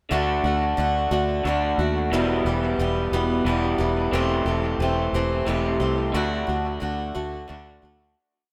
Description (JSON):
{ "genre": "rock", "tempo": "60 BPM (dotted quarters)", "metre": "6/8", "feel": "straight", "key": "unclear", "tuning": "A4 = 440 Hz", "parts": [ { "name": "picked swing-style acoustic guitar", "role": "accompaniment", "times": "0.1-8.2 s", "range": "E2 to G4", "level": "-28 LUFS", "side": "equal", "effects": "tape echo" }, { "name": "electric guitar through a small old amp", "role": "riff", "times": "0.1-8.1 s", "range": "E2 to G4", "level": "-28 LUFS", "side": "equal", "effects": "spring reverb, tape echo" }, { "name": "fingered electric bass", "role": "bass", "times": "0.1-8.1 s", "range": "E1 to Eb2", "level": "-29 LUFS", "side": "equal", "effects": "none" } ], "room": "moderate echo chamber reverb, RT60 1.9 s", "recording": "echo-heavy mix", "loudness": "-23 LUFS", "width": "mono", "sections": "0.1-8.2 verse", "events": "fade-out 6.1-8.2", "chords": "0.1 D; 2.1 Em; 4.1 Am7/E; 6.1 D" }